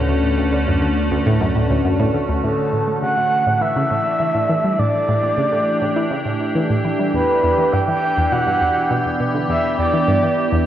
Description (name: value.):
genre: ambient, sequencer-driven space music.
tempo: 102 BPM.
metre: 4/4.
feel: straight.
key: unclear.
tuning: A4 = 439 Hz.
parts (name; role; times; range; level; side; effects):
evolving wavetable pad; sustained chords; 0.0-10.7 s; D3 to G4; -21 LUFS; equal; phaser, built-in reverb, shimmer reverb.
warm sub bass; bass; 0.0-2.4 s; D2; -23 LUFS; equal; none.
pulsing gated texture; texture; 0.0-2.5 s; B3 to B4; -38 LUFS; left 2 dB; none.
analog pluck; riff; 0.1-10.6 s; D2 to A3; -21 LUFS; equal; chorus, phaser, analog delay.
breathy flute-like synth lead; melody; 2.4-10.6 s; A4 to G5; -19 LUFS; right 1 dB; chorus, shimmer reverb, analog delay.
room: wet scoring stage reverb, RT60 1.9 s.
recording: worn, warbling old tape, cassette tape, warbly pitch drift.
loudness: -16 LUFS.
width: side -11 dB against mid.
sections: 0.0-2.4 A section; 2.4-10.7 B section.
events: none.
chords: 0.0 Dmaj7; 2.4 A7sus4; 7.1 Em7.